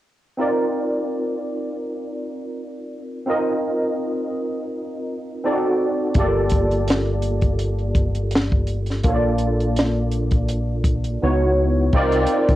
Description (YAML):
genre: R&B, neo-soul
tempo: 83 BPM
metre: 4/4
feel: swing 54% on 16ths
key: C dorian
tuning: A4 = 440 Hz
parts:
  - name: barky tine electric piano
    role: accompaniment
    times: 0.4-12.6 s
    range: A3 to Eb5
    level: -22 LUFS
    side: equal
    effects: overdrive, ensemble chorus
  - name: compact cocktail drum kit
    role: drums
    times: 6.1-12.6 s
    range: crash cymbal, hi-hat, kick drum, snare drum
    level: -20 LUFS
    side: equal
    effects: cassette tape
  - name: deep dub fingered electric bass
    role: bass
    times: 6.2-12.6 s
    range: G1 to D2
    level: -22 LUFS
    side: equal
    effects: transformer saturation
room: light reverb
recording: home recording on cassette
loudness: -19 LUFS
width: side -15 dB against mid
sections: 0.4-11.9 A section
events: silent gap 11.2-11.9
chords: 0.4 Cm11; 5.4 D7b9; 6.2 Gm9; 9.0 Bbmaj7; 11.2 Dbm11; 11.9 Cm11